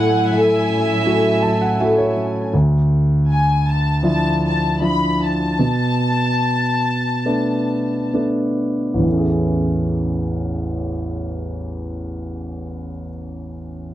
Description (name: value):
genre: pop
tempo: 65-81 BPM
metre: 4/4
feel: straight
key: A major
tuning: A4 = 441 Hz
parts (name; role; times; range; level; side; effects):
- dark studio violin section; melody; 0.0-8.1 s; E5 to B5; -22 LUFS; left 2 dB; none
- warm concert grand piano; accompaniment; 0.0-13.9 s; A1 to A5; -18 LUFS; equal; none
- warm symphonic string section; sustained chords; 0.0-2.5 s; A2 to G#5; -24 LUFS; equal; none
- fingerpicked steel-string acoustic guitar; arpeggios; 0.0-3.1 s; A2 to A4; -20 LUFS; left 2 dB; none
room: little or no reverb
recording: dry, close 1970s-style studio recording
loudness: -16 LUFS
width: side -13 dB against mid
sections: 0.0-9.1 A section; 9.1-12.7 B section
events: grand piano fill 1.1-2.5; slowing down 2.5-9.1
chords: 0.0 F#m7/A; 2.5 Dmadd9; 5.6 Bm7; 9.1 Amaj7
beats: 0.32 1.06 1.79 | 2.54 3.28 4.03 4.81 | 5.59 6.41 7.25 8.14 | 9.06 9.98 10.89 11.81